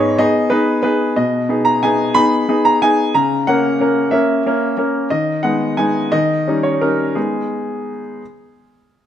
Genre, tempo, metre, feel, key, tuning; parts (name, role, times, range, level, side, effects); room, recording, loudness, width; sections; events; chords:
classical-period piano sonatina; 60 BPM (dotted quarters); 6/8; uneven beats; G# minor; A4 = 440 Hz
bright baby grand piano; solo; 0.0-8.2 s; G#2 to B5; -14 LUFS; equal
moderate recital hall reverb, RT60 1.4 s; close, detailed microphones; -14 LUFS; side -10 dB against mid
0.0-9.1 A section
0.0 G#m; 1.2 G#m/B; 3.1 A#dim/C#; 5.1 G#m/D#; 6.1 D#7; 7.2 G#m